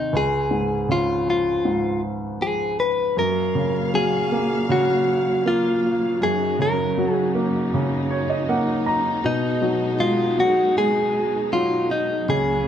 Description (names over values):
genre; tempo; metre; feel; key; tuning
pop; 79 BPM; 4/4; straight; unclear; A4 = 440 Hz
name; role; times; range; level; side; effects
direct-recorded clean electric guitar; melody; 0.0-12.7 s; D#4 to B4; -21 LUFS; equal; none
clear baby grand piano; accompaniment; 0.0-12.7 s; C#2 to A#5; -23 LUFS; equal; none
warm studio string section; sustained chords; 3.2-12.7 s; C#2 to E#5; -28 LUFS; right 1 dB; none
room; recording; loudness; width
moderate studio reverb, RT60 0.7 s; band playing live in one room; -19 LUFS; side -9 dB against mid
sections
0.0-12.7 A section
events
grand piano fill 7.7-9.2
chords
0.1 C#; 3.2 F#maj7; 6.2 D#m7/F#; 9.2 B6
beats
| 0.13 0.89 1.65 2.41 | 3.17 3.93 4.69 5.45 | 6.21 6.97 7.73 8.49 | 9.25 10.01 10.77 11.53 | 12.29